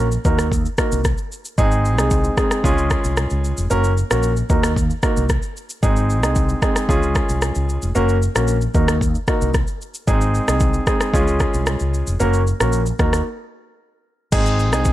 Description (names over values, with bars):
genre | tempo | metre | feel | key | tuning
afrobeats | 113 BPM | 4/4 | straight | Ab mixolydian | A4 = 437 Hz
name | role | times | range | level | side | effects
warm grand piano | accompaniment | 0.0-14.9 s | Ab3 to Bb4 | -21 LUFS | right 1 dB | none
fretless electric bass | bass | 0.0-14.9 s | F1 to Eb2 | -20 LUFS | equal | ensemble chorus
afro-pop drum kit | drums | 0.1-14.9 s | crash cymbal, kick drum, rim click, shaker | -20 LUFS | equal | vintage 12-bit sampler grit
room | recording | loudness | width
little or no reverb | none | -16 LUFS | side -14 dB against mid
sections
0.0-14.3 A section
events
break 13.3-14.3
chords
0.3 Ebm; 1.6 Ab; 2.6 Db; 3.7 Gb; 4.5 Ebm; 5.8 Ab; 6.9 Db; 8.0 Gb; 8.7 Ebm; 10.1 Ab; 11.1 Db; 12.2 Gb; 13.0 Ebm; 14.3 Ab